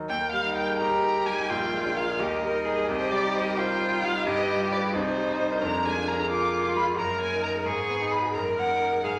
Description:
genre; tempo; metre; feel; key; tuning
quick classical-period movement for piano trio; 87 BPM (dotted quarters); 6/8; rubato; Eb major, Eb minor from 5.6 s; A4 = 440 Hz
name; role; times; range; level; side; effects
bright concert grand piano; accompaniment; 0.0-9.2 s; Bb1 to C5; -31 LUFS; equal; none
rich violin; melody; 0.1-9.2 s; C5 to D6; -30 LUFS; equal; none
rich cello; second line; 0.8-9.2 s; D4 to Bb4; -31 LUFS; equal; none
room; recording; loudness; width
wet recital hall reverb, RT60 1.4 s; none; -26 LUFS; mono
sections
0.1-9.2 A section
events
none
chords
0.1 Eb; 1.5 Bb7; 2.2 Eb; 2.9 Cm; 4.3 G7; 4.9 Cm; 5.6 Bb7/F; 7.0 Ebm/Gb; 7.7 Abm; 8.3 Ebm/Gb

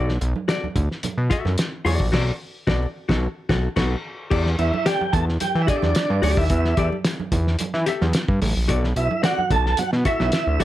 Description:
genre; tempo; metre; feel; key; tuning
funk; 110 BPM; 4/4; straight; E minor; A4 = 440 Hz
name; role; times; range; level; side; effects
vintage hollow-body jazz guitar; accompaniment; 0.0-10.6 s; F#4 to E5; -26 LUFS; left 5 dB; plate reverb
fat analog bass; bass; 0.0-10.6 s; A1 to E3; -21 LUFS; equal; none
cloth-damped thuddy drum kit; drums; 0.1-10.6 s; crash cymbal, hi-hat, kick drum, snare drum; -24 LUFS; equal; none
congas; percussion; 0.2-10.6 s; none; -31 LUFS; right 5 dB; none
tonewheel organ; melody; 4.6-10.6 s; D4 to A4; -23 LUFS; right 3 dB; fast rotary speaker, plate reverb
room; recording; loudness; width
light reverb; none; -19 LUFS; side -14 dB against mid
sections
0.0-4.3 A section; 4.3-10.6 B section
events
band accent 2.1-4.3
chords
0.0 Bm7; 4.3 Em7; 8.7 Bm7

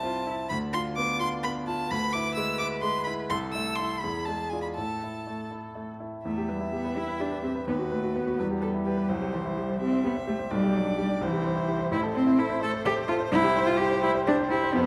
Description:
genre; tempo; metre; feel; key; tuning
quick classical-period movement for piano trio; 85 BPM (dotted quarters); 6/8; straight; A minor, E minor from 6.2 s; A4 = 440 Hz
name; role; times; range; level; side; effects
rich violin; melody; 0.0-14.9 s; A4 to E6; -35 LUFS; equal; none
rich cello; second line; 0.0-14.9 s; E3 to B4; -31 LUFS; equal; none
clear baby grand piano; accompaniment; 0.0-14.9 s; A1 to E5; -32 LUFS; equal; none
room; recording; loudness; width
wet recital hall reverb, RT60 1.4 s; none; -28 LUFS; mono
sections
0.0-6.2 A section; 6.2-14.9 B section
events
none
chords
0.0 Am/C; 0.5 Bdim/D; 1.9 E7/D; 3.3 Am/C; 4.0 E7b9; 4.8 A5; 6.2 Em; 7.7 B/D#; 8.4 Em; 9.1 C; 10.5 G/B; 11.2 C; 11.9 Am; 13.3 C

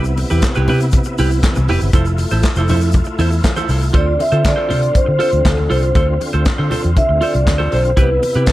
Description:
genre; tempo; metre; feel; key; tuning
disco; 119 BPM; 4/4; straight; unclear; A4 = 440 Hz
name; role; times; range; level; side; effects
clean electric guitar; accompaniment; 0.0-8.5 s; E4 to C5; -22 LUFS; right 3 dB; wide subtle chorus
overdriven tonewheel organ; sustained chords; 0.0-8.5 s; C3 to F4; -24 LUFS; equal; chorus vibrato, fast rotary speaker
vintage muted fingered electric bass; bass; 0.0-8.5 s; F1 to D3; -16 LUFS; equal; none
tube shaker; percussion; 0.0-3.9 s; none; -36 LUFS; left 6 dB; none
warm soul drum kit; drums; 0.2-8.5 s; handclaps, hi-hat, kick drum, snare drum; -17 LUFS; equal; none
congas; percussion; 0.2-8.5 s; none; -27 LUFS; left 2 dB; none
vibraphone with soft mallets; melody; 4.0-8.5 s; A4 to E5; -17 LUFS; equal; none
room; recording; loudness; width
little or no reverb; none; -12 LUFS; side -16 dB against mid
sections
0.0-3.9 A section; 3.9-8.5 B section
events
vibraphone solo 3.9-8.5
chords
0.0 Cmaj7; 1.9 Fmaj7; 3.9 Dm7; 8.0 Cmaj7

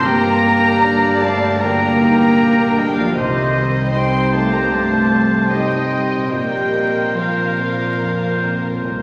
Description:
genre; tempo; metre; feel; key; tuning
cinematic; 72-78 BPM; 4/4; rubato; unclear; A4 = 439 Hz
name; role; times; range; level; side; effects
dark studio violin section; melody; 0.0-9.0 s; Bb4 to Eb5; -28 LUFS; equal; none
bright silver concert flute; second line; 0.0-8.8 s; C5 to G5; -28 LUFS; equal; none
warm chamber violin section; second line; 0.0-8.8 s; Eb5 to C6; -24 LUFS; equal; none
warm clarinet; second line; 0.0-9.0 s; F4 to G4; -30 LUFS; equal; none
clear concert grand piano; accompaniment; 0.0-9.0 s; Bb1 to C5; -27 LUFS; equal; none
warm studio viola section; accompaniment; 0.0-9.0 s; G3 to F4; -27 LUFS; equal; none
dark French horn section; sustained chords; 0.0-8.8 s; Eb3 to C4; -25 LUFS; equal; none
dark studio cello section; bass; 0.0-8.8 s; Eb3 to C4; -25 LUFS; equal; none
warm studio double bass section; bass; 0.0-9.0 s; G1 to C2; -27 LUFS; equal; none
clear oboe; second line; 0.1-9.0 s; Bb4 to C5; -26 LUFS; equal; none
room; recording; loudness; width
wet recital hall reverb, RT60 1.7 s; vinyl crackle; -16 LUFS; mono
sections
0.0-9.0 A section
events
none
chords
0.0 Gm; 3.2 Cm; 6.3 Bbsus2

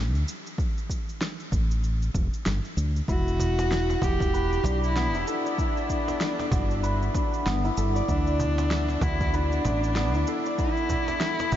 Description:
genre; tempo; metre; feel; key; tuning
organic downtempo; 96 BPM; 4/4; swing 59% on 16ths; E minor; A4 = 439 Hz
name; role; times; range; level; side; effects
woody fretless electric bass; bass; 0.0-11.6 s; E1 to D2; -26 LUFS; equal; tube saturation
electronic cabasa and snare drum; drums; 0.2-11.6 s; none; -35 LUFS; equal; overdrive, studio reverb
electronic kick drum; drums; 0.6-11.6 s; none; -28 LUFS; equal; overdrive, studio reverb
dark cello; melody; 3.1-11.6 s; D4 to G4; -29 LUFS; equal; ping-pong delay
santur; arpeggios; 3.1-11.6 s; B3 to D5; -29 LUFS; equal; diffuse ambient delay
cajon; percussion; 3.4-11.6 s; none; -35 LUFS; right 1 dB; none
room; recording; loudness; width
moderate huge ambient reverb, RT60 7.6 s; dreamy mix soaked in reverb, nothing above 7.6 kHz; -23 LUFS; side -11 dB against mid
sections
0.0-11.6 A section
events
none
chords
0.0 D5; 0.6 Asus4; 3.1 Em7; 5.6 Gmaj7; 8.1 D; 10.6 E5

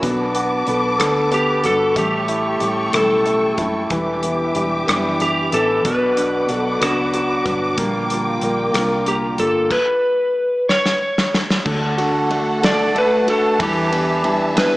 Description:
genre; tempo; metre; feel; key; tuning
six-eight pop ballad; 62 BPM (dotted quarters); 6/8; straight; D major; A4 = 440 Hz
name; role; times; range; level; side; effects
clear concert grand piano; accompaniment; 0.0-14.8 s; B2 to F#5; -22 LUFS; right 1 dB; slapback echo
warm studio string section; sustained chords; 0.0-14.8 s; G3 to D6; -24 LUFS; equal; none
fingerpicked steel-string acoustic guitar; arpeggios; 0.0-14.8 s; A2 to B4; -23 LUFS; left 1 dB; digital delay
hollow-body short-scale fingered electric bass; bass; 0.0-14.8 s; E1 to E2; -30 LUFS; equal; none
natural country drum kit; drums; 0.0-14.7 s; crash cymbal, hi-hat, kick drum, ride cymbal, rim click, snare drum; -23 LUFS; equal; none
electric slide guitar; melody; 1.3-14.8 s; F#4 to D5; -19 LUFS; equal; slapback echo, digital delay
room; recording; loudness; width
wet scoring stage reverb, RT60 2.0 s; big arena sound, small speaker sound; -16 LUFS; side -19 dB against mid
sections
0.0-11.7 A section; 11.7-14.8 B section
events
drum fill 10.7-11.7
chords
0.0 Bm7; 2.0 A7; 3.9 Em7; 5.9 Bm; 7.8 Bb6; 9.7 N.C.; 11.7 D; 13.6 Em7

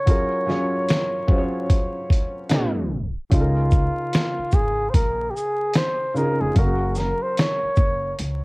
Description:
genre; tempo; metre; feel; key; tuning
lo-fi hip hop; 74 BPM; 4/4; swing 60% on 16ths; unclear; A4 = 439 Hz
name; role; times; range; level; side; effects
breathy flugelhorn; melody; 0.0-8.2 s; F4 to Db5; -25 LUFS; equal; low-pass filter, cassette tape
felt-muted upright piano; accompaniment; 0.0-8.4 s; Db3 to F5; -26 LUFS; equal; low-pass filter, cassette tape
dusty soul sampler-style drum kit; drums; 0.1-8.4 s; hi-hat, kick drum, shaker, snare drum; -19 LUFS; equal; none
upright bass; bass; 3.3-8.4 s; F1 to Db2; -25 LUFS; equal; none
room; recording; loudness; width
small room reverb; home recording on cassette, vinyl crackle, tape stop; -19 LUFS; side -27 dB against mid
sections
0.0-3.3 A section; 3.3-8.4 B section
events
tape stop 2.5-3.3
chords
0.1 Gbmaj7; 2.5 D6; 3.3 Db6; 6.6 Gbmaj7

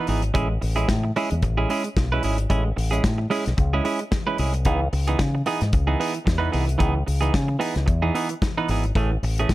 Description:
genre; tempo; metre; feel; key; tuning
disco; 112 BPM; 4/4; swing 56% on 16ths; C# minor; A4 = 440 Hz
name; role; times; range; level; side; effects
semi-hollow electric guitar; accompaniment; 0.0-9.5 s; E3 to B4; -25 LUFS; right 4 dB; none
fingered electric bass with an envelope filter; bass; 0.1-9.5 s; G#1 to C#3; -23 LUFS; left 1 dB; none
warm soul drum kit; drums; 0.1-9.5 s; hi-hat, kick drum, snare drum; -26 LUFS; left 1 dB; none
room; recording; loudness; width
studio reverb; none; -20 LUFS; side -16 dB against mid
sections
0.0-9.5 A section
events
none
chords
0.3 Amaj7; 4.7 C#m9; 9.0 Amaj7

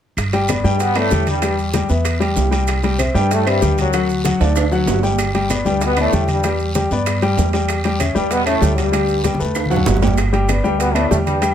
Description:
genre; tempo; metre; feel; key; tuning
latin, salsa; 192 BPM; 4/4; straight; G major; A4 = 440 Hz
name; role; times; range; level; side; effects
upright bass; bass; 0.2-11.5 s; G1 to G2; -20 LUFS; right 1 dB; none
bongos; percussion; 0.2-11.5 s; none; -29 LUFS; left 7 dB; none
claves; percussion; 0.2-11.5 s; none; -32 LUFS; right 1 dB; none
congas; percussion; 0.2-11.5 s; none; -25 LUFS; equal; none
guiro; percussion; 0.2-10.2 s; none; -33 LUFS; left 3 dB; none
maracas; percussion; 0.2-11.5 s; none; -33 LUFS; right 7 dB; none
timbales; percussion; 0.2-11.5 s; none; -26 LUFS; right 9 dB; none
warm grand piano; accompaniment; 0.3-11.5 s; F#3 to G5; -19 LUFS; left 3 dB; none
brilliant trombone section; melody; 0.6-11.5 s; F#2 to B3; -20 LUFS; left 1 dB; none
room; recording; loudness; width
light reverb; close, detailed microphones; -15 LUFS; side -9 dB against mid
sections
0.2-10.2 A section; 10.2-11.5 A section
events
drum fill 4.4-5.2, 9.2-10.2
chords
0.2 G; 1.4 Em; 2.7 C; 3.9 D; 5.2 Gadd9; 6.4 Em7; 7.7 A7/E; 8.9 Dsus4; 9.6 D6; 10.2 G

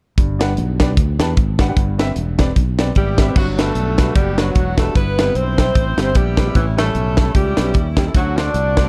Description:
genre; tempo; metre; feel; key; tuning
uptempo gospel; 150 BPM; 4/4; swing 56% on 8ths; G major; A4 = 440 Hz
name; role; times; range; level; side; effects
warm baby grand piano; accompaniment; 0.2-8.9 s; G2 to A5; -27 LUFS; equal; none
sustaining fretless electric bass; bass; 0.2-8.9 s; E1 to E2; -22 LUFS; equal; none
tight funk drum kit; drums; 0.2-8.9 s; crash cymbal, hi-hat, kick drum, snare drum; -19 LUFS; equal; none
breathy tenor saxophone; melody; 3.0-8.9 s; E3 to D4; -25 LUFS; equal; none
bright saxophone section; melody; 3.0-8.9 s; G3 to D5; -27 LUFS; equal; slapback echo
room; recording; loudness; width
little or no reverb; dark, warm production; -17 LUFS; mono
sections
0.2-3.4 A section; 3.4-8.9 B section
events
none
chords
0.2 Gmaj7; 1.8 Cmaj7; 3.4 Gmaj7; 5.0 Cmaj7/G; 6.6 A7; 8.1 D7

